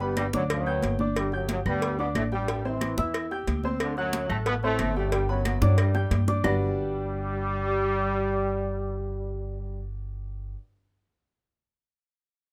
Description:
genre	latin, salsa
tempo	182 BPM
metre	4/4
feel	straight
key	G major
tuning	A4 = 436 Hz
part	bright trombone section	melody	0.0-9.8 s	F#2 to E4	-32 LUFS	equal	none
part	clear baby grand piano	accompaniment	0.0-10.5 s	G3 to G6	-34 LUFS	equal	none
part	upright bass	bass	0.0-10.5 s	G1 to G2	-31 LUFS	equal	none
part	congas	percussion	0.0-6.5 s	none	-36 LUFS	equal	none
part	claves	percussion	0.2-6.5 s	none	-37 LUFS	equal	none
part	cowbell and bongos	percussion	0.2-6.5 s	none	-36 LUFS	equal	none
room	moderate small room reverb, RT60 0.5 s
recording	none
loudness	-27 LUFS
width	mono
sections	0.0-6.4 A section; 6.4-9.1 B section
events	drum fill 5.6-6.4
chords	0.0 Gmaj7; 2.5 Am7; 3.8 D7; 5.1 Gmaj7

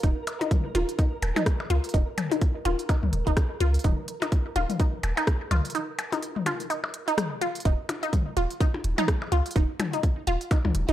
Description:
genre	minimal techno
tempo	126 BPM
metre	4/4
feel	swing 58% on 16ths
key	unclear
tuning	A4 = 442 Hz
part	resonant blip pluck	riff	0.0-10.9 s	Eb4 to F4	-30 LUFS	equal	phaser, sidechain pumping, tape echo
part	punchy sub bass	bass	0.0-10.9 s	Eb1 to Db2	-26 LUFS	equal	tube saturation, sidechain pumping
part	electronic kick drum	drums	0.0-10.6 s	none	-24 LUFS	equal	none
part	garage drum kit	drums	0.0-10.9 s	hi-hat, rim click	-34 LUFS	equal	none
part	flickering grainy texture	texture	0.0-7.7 s	Bb4	-41 LUFS	right 4 dB	built-in reverb, sidechain pumping
part	electronic percussion blips and toms	percussion	0.3-10.7 s	none	-31 LUFS	left 4 dB	overdrive, analog delay
room	little or no reverb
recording	dry, gritty hardware recording, transformer saturation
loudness	-24 LUFS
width	side -12 dB against mid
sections	0.0-7.7 A section; 7.7-10.9 B section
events	break 5.7-7.7; drop 7.7-10.9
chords	0.0 Eb5

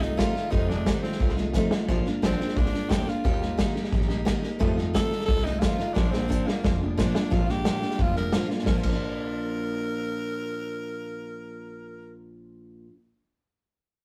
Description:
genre	rockabilly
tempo	177 BPM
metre	4/4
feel	straight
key	Bb major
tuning	A4 = 439 Hz
part	raspy tenor saxophone	melody	0.0-12.1 s	Bb3 to Bb4	-35 LUFS	equal	none
part	picked steel-string acoustic guitar	accompaniment	0.0-12.9 s	F2 to G4	-32 LUFS	equal	none
part	upright bass	bass	0.0-12.8 s	F1 to F2	-34 LUFS	equal	none
part	vintage drum kit	drums	0.0-8.9 s	crash cymbal, hi-hat, kick drum, snare drum	-28 LUFS	equal	none
room	light reverb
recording	rough rehearsal-room recording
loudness	-26 LUFS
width	mono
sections	0.0-7.3 A section; 7.3-8.7 B section; 8.7-11.4 C section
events	drum fill 1.5-1.9, 6.0-7.3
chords	0.0 F7; 1.9 Bb; 3.2 Eb; 4.6 F7; 6.0 Bb

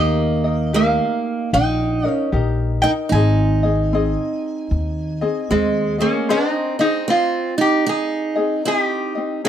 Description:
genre	Hawaiian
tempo	76 BPM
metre	4/4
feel	swing 63% on 8ths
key	Ab major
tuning	A4 = 440 Hz
part	metal-body resonator slide guitar	melody	0.0-9.5 s	C4 to Ab5	-21 LUFS	equal	none
part	picked steel-string acoustic guitar	second line	0.0-9.5 s	Ab3 to Eb4	-22 LUFS	right 5 dB	none
part	ukulele	accompaniment	0.0-9.5 s	C4 to Eb5	-24 LUFS	left 5 dB	none
part	upright bass	bass	0.0-6.0 s	Ab1 to Eb2	-20 LUFS	left 1 dB	none
room	small room ambience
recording	dry, close 1970s-style studio recording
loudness	-17 LUFS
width	side -10 dB against mid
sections	0.0-6.3 A section; 6.3-9.5 A section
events	none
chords	0.0 Eb; 3.1 Ab

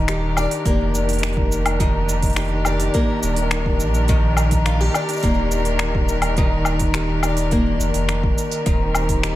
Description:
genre	folktronica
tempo	105 BPM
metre	4/4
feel	straight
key	Eb major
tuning	A4 = 440 Hz
part	rich string quartet	sustained chords	0.0-9.4 s	Eb3 to Bb4	-27 LUFS	right 1 dB	none
part	picked twelve-string acoustic guitar	arpeggios	0.0-9.4 s	Eb3 to Eb5	-22 LUFS	left 1 dB	ping-pong delay
part	warm sub bass	bass	0.0-9.4 s	Eb1 to Bb1	-22 LUFS	equal	none
part	organic electronic drum kit	drums	0.1-9.3 s	finger snaps, hi-hat, shaker, woodblock	-25 LUFS	left 2 dB	none
part	electronic kick drum	drums	0.7-9.2 s	none	-21 LUFS	equal	none
room	light reverb, digital ambience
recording	none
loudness	-17 LUFS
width	side -15 dB against mid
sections	0.0-9.4 A section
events	none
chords	0.0 Ebmaj7; 8.7 Cm7/Eb

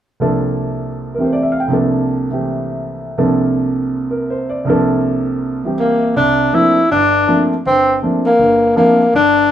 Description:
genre	jazz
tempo	162 BPM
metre	4/4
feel	swing 64% on 8ths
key	C mixolydian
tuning	A4 = 440 Hz
part	warm concert grand piano	accompaniment	0.2-9.5 s	G1 to G5	-16 LUFS	right 1 dB	none
part	breathy tenor saxophone	melody	5.8-9.5 s	Bb3 to E4	-11 LUFS	left 1 dB	none
room	moderate studio reverb, RT60 0.8 s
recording	band playing live in one room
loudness	-13 LUFS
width	side -10 dB against mid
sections	0.2-6.2 A section; 6.2-9.5 B section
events	none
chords	0.2 C13sus4

